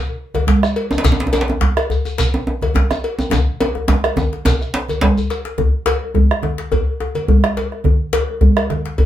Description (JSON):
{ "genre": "west african traditional, West African drum ensemble", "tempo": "106 BPM", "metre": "4/4", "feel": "swing 54% on 16ths", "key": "none", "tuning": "none", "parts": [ { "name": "djembe", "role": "percussion", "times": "0.1-9.1 s", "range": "none", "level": "-20 LUFS", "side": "left 3 dB", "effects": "none" }, { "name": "congas", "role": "percussion", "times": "0.3-8.8 s", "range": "none", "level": "-22 LUFS", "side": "right 2 dB", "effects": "none" }, { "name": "cowbell", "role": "percussion", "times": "0.3-9.1 s", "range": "none", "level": "-24 LUFS", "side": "left 2 dB", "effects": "none" }, { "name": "bombo", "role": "percussion", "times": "0.4-9.1 s", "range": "none", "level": "-17 LUFS", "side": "right 1 dB", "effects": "none" }, { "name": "shekere", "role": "percussion", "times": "0.6-5.4 s", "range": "none", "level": "-27 LUFS", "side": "left 1 dB", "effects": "none" }, { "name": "djembe", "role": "percussion", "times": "0.9-5.2 s", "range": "none", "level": "-20 LUFS", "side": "right 1 dB", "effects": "none" } ], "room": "wet studio ambience, RT60 0.5 s", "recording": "band playing live in one room", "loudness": "-15 LUFS", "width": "side -12 dB against mid", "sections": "0.0-5.6 A section; 5.6-9.1 B section", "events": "drum fill 3.3-5.6", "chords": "none" }